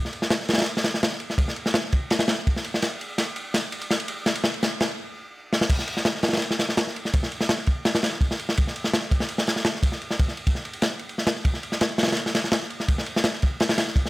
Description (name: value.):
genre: drum and bass.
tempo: 167 BPM.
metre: 4/4.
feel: straight.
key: none.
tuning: none.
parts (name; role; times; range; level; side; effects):
crunchy breakbeat drum kit; drums; 0.1-14.1 s; crash cymbal, kick drum, ride cymbal, snare drum; -22 LUFS; equal; none.
room: little or no reverb.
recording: none.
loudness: -22 LUFS.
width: side -19 dB against mid.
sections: 0.0-5.7 A section; 5.7-14.1 B section.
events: build-up 0.0-5.7; drum fill 2.8-5.0, 5.5; stop 5.0-5.7; drop 5.7-14.1.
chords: none.